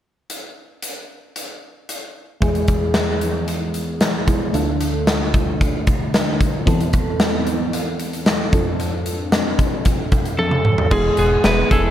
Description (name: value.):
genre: 1980s-style pop.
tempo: 113 BPM.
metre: 4/4.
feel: straight.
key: unclear.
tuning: A4 = 441 Hz.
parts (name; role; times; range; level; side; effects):
big rock drum kit; drums; 0.3-11.8 s; crash cymbal, hi-hat, kick drum, snare drum, toms; -19 LUFS; equal; none.
FM electric piano with soft pad layer; accompaniment; 2.4-11.9 s; D2 to A4; -22 LUFS; equal; chorus, phaser, slapback echo.
lightly driven lead guitar; melody; 10.4-11.9 s; G#4 to B4; -19 LUFS; equal; slapback echo.
direct-recorded clean electric guitar; riff; 10.9-11.9 s; G#3 to G#4; -23 LUFS; right 2 dB; wide subtle chorus, slapback echo.
chorused synth bass; bass; 10.9-11.9 s; E1; -21 LUFS; equal; none.
room: moderate lush hall reverb, RT60 1.9 s, small room reverb.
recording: big arena sound.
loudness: -16 LUFS.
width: side -11 dB against mid.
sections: 0.3-2.4 A section; 2.4-10.9 B section.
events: drum fill 10.4-10.9.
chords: 0.3 N.C.; 2.4 E; 4.5 Dm; 6.7 Amadd9/E; 8.5 F6; 10.9 E.